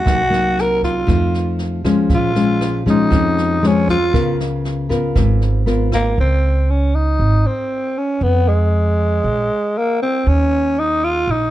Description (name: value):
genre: bossa nova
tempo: 118 BPM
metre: 4/4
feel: straight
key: Db major from 6.2 s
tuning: A4 = 440 Hz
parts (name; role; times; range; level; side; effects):
- growling tenor saxophone; melody; 0.0-11.5 s; Ab3 to Bb4; -18 LUFS; equal; none
- nylon-string guitar; accompaniment; 0.0-6.2 s; E#2 to A#4; -17 LUFS; left 2 dB; none
- upright bass; bass; 0.0-11.5 s; G#1 to F2; -18 LUFS; right 1 dB; none
- jazz brush drum kit; drums; 0.1-6.0 s; kick drum, rim click, snare drum; -21 LUFS; right 1 dB; none
room: light reverb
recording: dark, warm production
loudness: -14 LUFS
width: side -14 dB against mid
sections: 0.0-6.2 A section; 6.2-11.5 B section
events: tenor saxophone solo 0.0-6.2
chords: 0.1 Cm7b5; 1.1 F7; 2.1 A#m7; 4.1 C#6; 6.2 Dbsus2; 8.2 Fdim; 9.2 Abadd9/Bb; 10.3 Eb5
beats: | 0.07 0.57 1.08 1.59 | 2.10 2.61 3.12 3.63 | 4.14 4.65 5.16 5.67 | 6.18 6.69 7.20 7.71 | 8.21 8.72 9.23 9.74 | 10.25 10.76 11.27